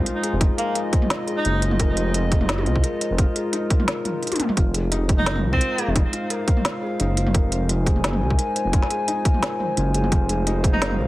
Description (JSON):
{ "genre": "half-time drum and bass", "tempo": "173 BPM", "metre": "4/4", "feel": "swing 53% on 16ths, half-time", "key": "unclear", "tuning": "A4 = 440 Hz", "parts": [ { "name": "dark analog pad", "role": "sustained chords", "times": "0.0-11.1 s", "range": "Ab3 to Ab5", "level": "-28 LUFS", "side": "equal", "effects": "chorus, sidechain pumping" }, { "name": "felt-muted upright piano", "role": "arpeggios", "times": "0.0-11.1 s", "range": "Eb4 to F5", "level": "-30 LUFS", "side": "left 3 dB", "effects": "digital delay" }, { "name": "dark detuned saw bass", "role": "bass", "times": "0.0-11.1 s", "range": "F1 to C2", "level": "-23 LUFS", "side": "equal", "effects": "none" }, { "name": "metallic inharmonic drone", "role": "texture", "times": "0.0-4.6 s", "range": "Ab3 to Bb4", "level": "-34 LUFS", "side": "left 5 dB", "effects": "chorus, built-in reverb, phaser" }, { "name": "organic electronic drum kit", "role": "drums", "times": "0.1-11.0 s", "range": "hi-hat, snare drum, toms", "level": "-25 LUFS", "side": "equal", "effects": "none" }, { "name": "electronic kick drum", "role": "drums", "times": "0.4-10.7 s", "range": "none", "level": "-20 LUFS", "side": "equal", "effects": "none" }, { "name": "breathy alto saxophone", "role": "melody", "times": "0.6-1.6, 5.2-6.0, 10.7-10.9 s", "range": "Bb3 to Eb4", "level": "-27 LUFS", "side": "equal", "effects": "digital delay" } ], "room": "light reverb", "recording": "heavily compressed radio sound", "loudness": "-19 LUFS", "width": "side -17 dB against mid", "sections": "0.0-4.6 A section; 4.6-11.1 A section", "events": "drop 0.0-4.6, 4.6-11.1; drum fill 4.3", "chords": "0.0 Fm", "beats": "0.06 | 0.41 0.76 1.10 1.45 | 1.80 2.14 2.49 2.84 | 3.18 3.53 3.88 4.22 | 4.57 4.92 5.26 5.61 | 5.96 6.30 6.65 7.00 | 7.34 7.69 8.04 8.38 | 8.73 9.08 9.43 9.77 | 10.12 10.47 10.81" }